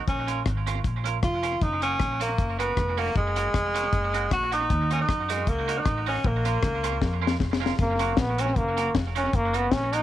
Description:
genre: ska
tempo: 156 BPM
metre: 4/4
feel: straight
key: F# major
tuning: A4 = 435 Hz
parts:
  - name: warm tenor saxophone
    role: melody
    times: 0.1-7.4 s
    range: G#3 to F#4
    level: -27 LUFS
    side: equal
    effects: none
  - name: upright bass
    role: bass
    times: 0.1-10.0 s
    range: E#1 to F#2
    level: -29 LUFS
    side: equal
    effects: none
  - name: deep reggae drum kit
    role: drums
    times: 0.1-10.0 s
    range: hi-hat, kick drum, rim click, snare drum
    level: -28 LUFS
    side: left 2 dB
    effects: tape echo
  - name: twangy electric guitar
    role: accompaniment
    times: 0.3-10.0 s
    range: C#4 to A#4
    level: -32 LUFS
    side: right 11 dB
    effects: wide subtle chorus, tape echo
  - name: brilliant trombone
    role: melody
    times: 7.8-10.0 s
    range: A#3 to D#4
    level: -26 LUFS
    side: left 1 dB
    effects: none
room: light reverb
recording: 1960s-style stereo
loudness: -23 LUFS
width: side -12 dB against mid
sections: 0.0-7.8 A section; 7.8-10.0 B section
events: drum fill 7.0-7.8; trombone solo 7.8-10.0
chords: 0.1 A#m; 1.6 F#; 4.7 D#m; 6.3 A#m; 7.8 F#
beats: | 0.08 0.46 0.85 1.24 | 1.62 2.01 2.39 2.78 | 3.16 3.55 3.94 4.32 | 4.71 5.09 5.48 5.87 | 6.25 6.64 7.02 7.41 | 7.79 8.18 8.56 8.95 | 9.34 9.72

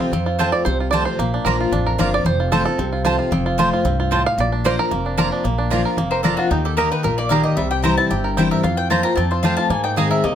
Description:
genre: bluegrass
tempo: 225 BPM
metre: 4/4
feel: straight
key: Bb major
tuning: A4 = 439 Hz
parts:
  - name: bluegrass banjo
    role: melody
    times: 0.0-10.3 s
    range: F3 to F5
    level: -23 LUFS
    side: right 4 dB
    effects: plate reverb
  - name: picked steel-string acoustic guitar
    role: accompaniment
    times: 0.0-10.3 s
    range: F2 to Ab4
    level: -21 LUFS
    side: left 3 dB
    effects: none
  - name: upright bass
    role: bass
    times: 0.1-10.3 s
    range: F1 to Ab2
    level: -24 LUFS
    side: equal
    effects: none
  - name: mandolin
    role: stabs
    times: 0.4-10.1 s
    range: Bb3 to Bb5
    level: -23 LUFS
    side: right 5 dB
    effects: none
  - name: mandolin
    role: melody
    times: 6.1-10.3 s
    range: Gb4 to Bb5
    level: -22 LUFS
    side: left 4 dB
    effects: plate reverb
room: moderate studio reverb, RT60 0.6 s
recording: none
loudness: -16 LUFS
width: side -9 dB against mid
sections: 0.0-5.4 A section; 5.4-10.3 B section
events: five-string banjo solo 0.0-5.4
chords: 0.0 F; 1.2 Bb; 2.3 F; 4.4 Bb; 6.5 Eb; 7.6 C; 8.6 Fsus4; 9.2 F; 9.7 Abadd9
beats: | 0.13 0.39 0.66 0.93 | 1.19 1.46 1.72 1.99 | 2.25 2.52 2.79 3.05 | 3.32 3.58 3.85 4.12 | 4.38 4.65 4.91 5.18 | 5.45 5.71 5.98 6.25 | 6.51 6.78 7.04 7.31 | 7.58 7.84 8.11 8.38 | 8.64 8.91 9.18 9.44 | 9.71 9.97 10.24

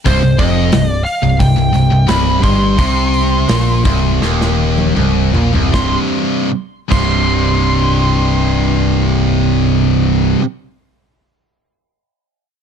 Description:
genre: heavy metal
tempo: 76-90 BPM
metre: 4/4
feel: straight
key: C minor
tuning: A4 = 440 Hz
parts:
  - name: high-gain lead guitar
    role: melody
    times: 0.1-9.6 s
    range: C5 to C6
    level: -20 LUFS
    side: right 1 dB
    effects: distortion
  - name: high-gain distorted guitar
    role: riff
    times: 0.1-10.4 s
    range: C2 to C3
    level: -16 LUFS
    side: left 10 dB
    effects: distortion
  - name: high-gain distorted guitar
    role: riff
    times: 0.1-10.4 s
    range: C2 to C3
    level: -17 LUFS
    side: right 11 dB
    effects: distortion
  - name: growling picked electric bass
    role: bass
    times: 0.1-10.3 s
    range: C1 to C2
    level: -16 LUFS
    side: equal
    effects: overdrive
  - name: modern studio drum kit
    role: drums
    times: 0.1-7.1 s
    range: crash cymbal, hi-hat, kick drum, snare drum, toms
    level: -19 LUFS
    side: equal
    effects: none
room: little or no reverb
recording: dark, warm production, lossy compression artefacts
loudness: -11 LUFS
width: side -7 dB against mid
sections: 0.0-5.7 A section; 5.7-8.9 B section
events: slowing down 0.1-5.7; drum fill 4.2-5.7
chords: 0.0 Cm; 5.7 C5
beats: | 0.06 0.72 1.40 2.08 | 2.77 3.48 4.21 4.96 | 5.73 6.52 7.31 8.09

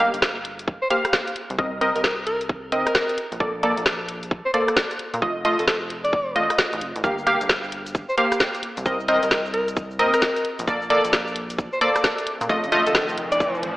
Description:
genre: UK garage, two-step garage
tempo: 132 BPM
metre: 4/4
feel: swing 63% on 16ths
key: unclear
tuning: A4 = 441 Hz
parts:
  - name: punchy chord stab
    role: stabs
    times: 0.0-12.8 s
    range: A3 to F5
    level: -22 LUFS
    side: equal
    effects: chorus, diffuse ambient delay
  - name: rubbery square bass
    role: bass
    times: 0.0-13.8 s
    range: F1 to Bb2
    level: -34 LUFS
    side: equal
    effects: none
  - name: garage drum kit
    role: drums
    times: 0.0-13.7 s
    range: hi-hat, rim click, shaker, snare drum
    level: -24 LUFS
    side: equal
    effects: small room ambience
  - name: electronic kick drum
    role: drums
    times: 0.2-13.5 s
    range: none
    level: -25 LUFS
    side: equal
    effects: small room ambience
  - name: warm alto saxophone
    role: melody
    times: 0.8-13.6 s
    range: A4 to D5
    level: -26 LUFS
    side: equal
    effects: diffuse ambient delay
  - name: riser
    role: sound effects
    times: 11.7-13.8 s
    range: none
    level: -32 LUFS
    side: equal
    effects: none
room: wet lush hall reverb, RT60 1.7 s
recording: dreamy mix soaked in reverb, AM radio sound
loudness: -20 LUFS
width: side -18 dB against mid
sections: 0.0-13.8 A section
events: riser 11.7-13.8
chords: 0.0 Gm7; 1.4 Cm7; 3.2 Bbmaj7; 5.2 F7; 7.0 Gm7; 8.6 Cm7; 10.4 Bbmaj7; 12.5 F7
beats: 0.22 0.68 1.13 | 1.59 2.04 2.50 2.95 | 3.40 3.86 4.31 4.77 | 5.22 5.68 6.13 6.59 | 7.04 7.50 7.95 8.40 | 8.86 9.31 9.77 10.22 | 10.68 11.13 11.59 12.04 | 12.49 12.95 13.40

